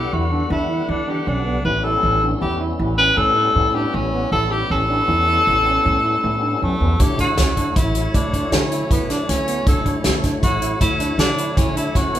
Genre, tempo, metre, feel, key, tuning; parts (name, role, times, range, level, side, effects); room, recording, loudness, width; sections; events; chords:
progressive instrumental, band music in an uneven meter; 157 BPM; 7/4; straight; A4 = 436 Hz
clear tenor saxophone; melody; 0.0-12.2 s; A3 to B4; -20 LUFS; left 1 dB; tape echo
tonewheel organ; accompaniment; 0.0-12.2 s; D3 to F#5; -27 LUFS; left 2 dB; overdrive, chorus vibrato, slow rotary speaker
barky tine electric piano; arpeggios; 0.0-12.2 s; B3 to E4; -26 LUFS; right 2 dB
upright bass; bass; 0.0-12.2 s; A1 to E3; -22 LUFS; equal
natural country drum kit; drums; 7.0-12.2 s; hi-hat, kick drum, snare drum; -20 LUFS; equal
wet large studio reverb, RT60 1.0 s; band playing live in one room; -16 LUFS; side -12 dB against mid
0.0-12.2 A section
0.0 Em7; 1.7 A7; 7.0 Dmaj7